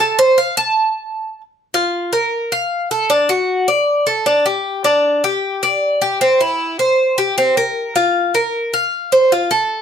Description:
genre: latin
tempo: 155 BPM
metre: 4/4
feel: straight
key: unclear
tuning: A4 = 440 Hz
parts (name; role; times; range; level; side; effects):
- Cuban tres; solo; 0.0-9.8 s; C4 to A5; -14 LUFS; equal; none
room: moderate studio reverb, RT60 0.6 s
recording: none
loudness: -14 LUFS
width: side -8 dB against mid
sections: 0.0-1.5 A section; 1.5-9.8 B section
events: Cuban tres solo 0.0-1.5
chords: none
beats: | 0.00 0.39 0.77 1.16 | 1.55 1.94 2.32 2.71 | 3.10 3.49 3.88 4.26 | 4.65 5.04 5.43 5.82 | 6.21 6.59 6.98 7.37 | 7.76 8.15 8.53 8.92 | 9.31 9.70

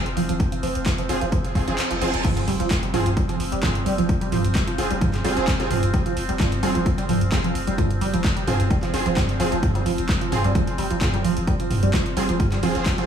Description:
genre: driving peak-time techno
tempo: 130 BPM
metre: 4/4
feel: straight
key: F minor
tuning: A4 = 438 Hz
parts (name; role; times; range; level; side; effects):
- overtone-sweeping drone; drone; 0.0-13.1 s; F3 to C4; -30 LUFS; equal; chorus, built-in reverb, sidechain pumping
- saturated sub bass; bass; 0.1-13.1 s; F1; -30 LUFS; equal; overdrive, sidechain pumping, low-pass filter
- punchy analog drum machine; drums; 0.1-13.1 s; crash cymbal, handclaps, hi-hat, toms; -26 LUFS; right 1 dB; overdrive
- tight sequenced synth; riff; 0.2-13.1 s; F3 to G3; -26 LUFS; right 2 dB; chorus, phaser, sidechain pumping, tape echo
- electronic kick drum; drums; 0.4-13.0 s; none; -23 LUFS; equal; overdrive
- rave stab; stabs; 1.1-13.1 s; C4 to Ab4; -28 LUFS; right 1 dB; chorus, built-in reverb, sidechain pumping, tape echo
- reverse cymbal and impact; sound effects; 1.6-4.1 s; none; -32 LUFS; right 2 dB; none
room: moderate plate reverb, RT60 1.3 s, digital ambience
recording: dreamy mix soaked in reverb, studio reverb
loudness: -19 LUFS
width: side -8 dB against mid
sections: 0.0-2.2 A section; 2.2-13.1 B section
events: reverse cymbal 1.6-2.2; kick drops out 1.8-2.2; drop 2.2-13.1; impact 2.2-4.1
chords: 0.0 Fm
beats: | 0.40 0.86 1.32 1.78 | 2.25 2.71 3.17 3.63 | 4.09 4.55 5.01 5.48 | 5.94 6.40 6.86 7.32 | 7.78 8.24 8.71 9.17 | 9.63 10.09 10.55 11.01 | 11.48 11.94 12.40 12.86

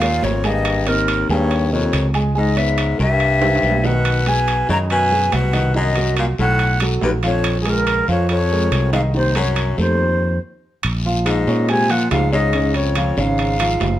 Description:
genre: Afro-Cuban jazz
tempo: 141 BPM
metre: 4/4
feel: straight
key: Bb minor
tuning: A4 = 440 Hz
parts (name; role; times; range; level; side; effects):
- breathy mellow concert flute; melody; 0.0-14.0 s; Ab4 to Bb5; -21 LUFS; left 1 dB; none
- clear baritone saxophone; second line; 0.0-14.0 s; C2 to Db3; -23 LUFS; left 3 dB; none
- warm grand piano; accompaniment; 0.0-13.9 s; C3 to Db6; -23 LUFS; right 1 dB; none
- fretless electric bass; bass; 0.0-14.0 s; Gb1 to Bb2; -19 LUFS; equal; none
- timbales; percussion; 0.0-14.0 s; none; -26 LUFS; right 6 dB; none
- guiro; percussion; 0.2-14.0 s; none; -32 LUFS; left 4 dB; none
room: moderate studio reverb, RT60 0.8 s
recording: none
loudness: -15 LUFS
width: side -13 dB against mid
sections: 0.0-10.8 A section; 10.8-14.0 B section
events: drum fill 3.4-4.1; stop 10.0-10.8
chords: 0.0 Eb9; 0.7 Abmaj9; 2.4 Dbm7; 3.2 C7; 4.1 B6; 5.7 Cm7b5; 6.6 B5; 7.4 Bbm7; 9.1 Cm7b5; 10.0 F5; 10.8 Bbm7; 12.5 Db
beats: 0.23 | 0.66 1.08 1.51 1.93 | 2.35 2.78 3.20 3.63 | 4.05 4.48 4.90 5.32 | 5.75 6.17 6.60 7.02 | 7.45 7.87 8.29 8.72 | 9.14 9.57 9.99 10.41 | 10.84 11.26 11.69 12.11 | 12.54 12.96 13.38 13.81

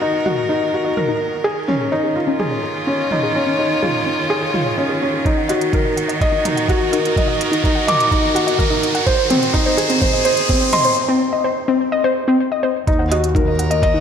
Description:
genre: piano and strings electronica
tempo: 126 BPM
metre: 4/4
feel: straight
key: Eb dorian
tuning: A4 = 439 Hz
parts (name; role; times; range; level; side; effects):
- rich string quartet; sustained chords; 0.0-14.0 s; Eb3 to Db5; -23 LUFS; right 2 dB; none
- felt-muted upright piano; riff; 0.0-14.0 s; C4 to D6; -19 LUFS; equal; ping-pong delay
- riser; sound effects; 1.8-11.0 s; none; -25 LUFS; right 1 dB; none
- warbly dusty pluck; arpeggios; 0.1-14.0 s; C4 to Gb5; -21 LUFS; left 2 dB; chorus, sidechain pumping, ping-pong delay
- organic electronic drum kit; drums; 0.3-13.9 s; hi-hat, toms; -28 LUFS; right 2 dB; none
- electronic kick drum; drums; 5.3-13.9 s; none; -19 LUFS; right 1 dB; overdrive
- clear symphonic double bass section; bass; 12.9-14.0 s; Eb2; -20 LUFS; right 1 dB; sidechain pumping
room: wet recital hall reverb, RT60 1.3 s, small room ambience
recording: none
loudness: -15 LUFS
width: side -8 dB against mid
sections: 0.0-12.9 A section; 12.9-14.0 B section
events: build-up 0.0-12.9; filter sweep on synth arpeggio sound 0.0-12.9; riser 1.8-11.0; break 11.0-12.9; drop 12.9-14.0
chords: 0.0 N.C.; 1.4 Dbadd9/Eb; 5.3 Ebm; 9.1 Ab/Eb; 12.9 Ebm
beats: 0.02 0.50 0.97 | 1.45 1.92 2.40 2.88 | 3.35 3.83 4.30 4.78 | 5.26 5.73 6.21 6.69 | 7.16 7.64 8.12 8.59 | 9.07 9.54 10.02 10.50 | 10.97 11.45 11.92 12.40 | 12.88 13.35 13.83

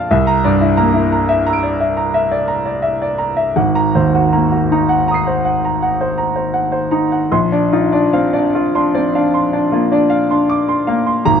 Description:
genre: classical, impressionist solo piano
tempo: 74-90 BPM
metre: 5/4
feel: rubato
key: Bb mixolydian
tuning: A4 = 440 Hz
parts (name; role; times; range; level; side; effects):
- clear concert grand piano; solo; 0.0-11.4 s; Ab1 to D7; -13 LUFS; equal; none
room: light reverb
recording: dark, warm production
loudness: -13 LUFS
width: side -7 dB against mid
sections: 0.0-7.3 A section; 7.3-11.4 B section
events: none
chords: 0.1 C9; 3.6 Ab9; 7.3 Bbadd9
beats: | 0.11 0.77 1.45 2.14 2.84 | 3.56 4.34 5.08 5.83 6.56 | 7.32 8.13 8.93 9.72 10.49 | 11.26

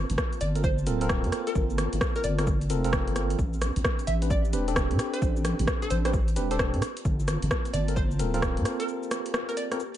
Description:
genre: UK garage, two-step garage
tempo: 131 BPM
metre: 4/4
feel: swing 64% on 16ths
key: unclear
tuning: A4 = 440 Hz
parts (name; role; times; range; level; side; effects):
- airy breathy pad; sustained chords; 0.0-10.0 s; Bb3 to A5; -39 LUFS; right 2 dB; chorus, sidechain pumping
- deep soft wobble bass; bass; 0.0-8.6 s; D1 to A2; -27 LUFS; equal; chorus
- punchy analog drum machine; drums; 0.1-10.0 s; hi-hat, rim click, shaker; -31 LUFS; equal; overdrive
- electronic kick drum; drums; 0.2-8.5 s; none; -28 LUFS; equal; overdrive
- hollow square pluck; melody; 0.4-10.0 s; A4 to E5; -35 LUFS; equal; lush chorus, cassette tape, dub echo
- tine electric piano; stabs; 0.6-9.8 s; C4 to B4; -32 LUFS; right 1 dB; medium stereo tremolo, dub echo
room: digital ambience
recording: nothing above 10.7 kHz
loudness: -24 LUFS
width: side -12 dB against mid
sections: 0.0-10.0 A section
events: break 8.9-10.0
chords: 0.0 Gm11; 3.4 Am11; 6.8 Gm11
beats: 0.18 0.64 1.10 | 1.55 2.01 2.47 2.93 | 3.39 3.85 4.30 4.76 | 5.22 5.68 6.13 6.59 | 7.05 7.51 7.97 8.43 | 8.88 9.34 9.80

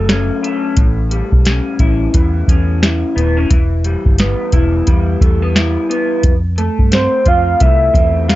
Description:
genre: indie pop, bedroom pop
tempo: 88 BPM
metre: 4/4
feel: swing 60% on 16ths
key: E dorian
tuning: A4 = 440 Hz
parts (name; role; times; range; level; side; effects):
- electric guitar through a small old amp; accompaniment; 0.0-8.4 s; A2 to F4; -18 LUFS; left 1 dB; analog chorus, warbly pitch drift, plate reverb
- vintage muted fingered electric bass; bass; 0.0-8.4 s; D#1 to G2; -16 LUFS; equal; none
- soft vintage rhythm box; drums; 0.1-8.4 s; hi-hat, kick drum, snare drum; -13 LUFS; equal; none
- soft octave-layered synth lead; melody; 6.9-8.3 s; C5 to F5; -13 LUFS; right 1 dB; lush chorus
room: light reverb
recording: dark, warm production, nothing above 7.7 kHz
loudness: -11 LUFS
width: side -16 dB against mid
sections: 0.0-8.4 A section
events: none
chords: 0.0 Dmaj7; 0.8 A7; 3.5 Em; 6.2 F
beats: 0.09 | 0.77 1.46 2.14 2.82 | 3.50 4.19 4.87 5.56 | 6.24 6.92 7.61 8.29

